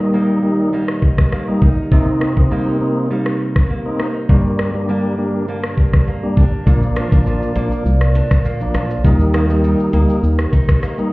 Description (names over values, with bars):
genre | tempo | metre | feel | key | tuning
dancehall | 101 BPM | 4/4 | straight | unclear | A4 = 442 Hz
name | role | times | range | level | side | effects
tonewheel organ | accompaniment | 0.0-11.1 s | F3 to Eb4 | -19 LUFS | equal | fast rotary speaker
dark French horn section | sustained chords | 0.0-11.1 s | Eb2 to D5 | -24 LUFS | equal | sidechain pumping
picked old ladder-braced acoustic guitar | arpeggios | 0.0-11.1 s | G2 to Eb4 | -23 LUFS | right 2 dB | none
island pop drum kit | drums | 0.9-11.1 s | hi-hat, kick drum, rim click, shaker | -15 LUFS | equal | none
organ-like FM bass | bass | 6.7-10.5 s | A1 to Eb2 | -15 LUFS | equal | none
room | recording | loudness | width
little or no reverb | heard muffled through a wall, stone room reverb, EQ | -13 LUFS | side -21 dB against mid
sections
0.0-6.7 A section; 6.7-11.1 B section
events
none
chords
0.0 Eb; 1.9 Cm7; 4.3 Gm; 6.7 Bb; 9.0 Eb